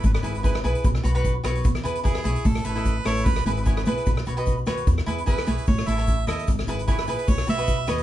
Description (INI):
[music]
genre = calypso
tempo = 149 BPM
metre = 4/4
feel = straight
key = E major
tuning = A4 = 440 Hz
[part]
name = clear harmonica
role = melody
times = 0.0-8.0 s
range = G#4 to E5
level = -30 LUFS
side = right 3 dB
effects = slapback echo
[part]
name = cavaquinho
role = accompaniment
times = 0.0-8.0 s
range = E4 to E5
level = -29 LUFS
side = right 1 dB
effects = none
[part]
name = upright bass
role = bass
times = 0.0-8.0 s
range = G#1 to E2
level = -25 LUFS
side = equal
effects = none
[part]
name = soft-mallet drum kit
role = drums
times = 0.0-8.0 s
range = hi-hat, kick drum, rim click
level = -24 LUFS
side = equal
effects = none
[part]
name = egg shaker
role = percussion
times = 0.0-8.0 s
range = none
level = -47 LUFS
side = left 5 dB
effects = none
[sound]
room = moderate small room ambience, RT60 0.5 s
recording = heard from further back in the room, nothing above 10.7 kHz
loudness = -21 LUFS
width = side -13 dB against mid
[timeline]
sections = 0.0-8.0 A section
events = none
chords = 0.0 E/G#; 0.8 Bsus2; 1.6 E6; 2.5 A; 3.3 E6/G#; 4.1 Bsus2; 4.9 E6; 5.7 A; 6.5 E6/G#; 7.3 Bsus2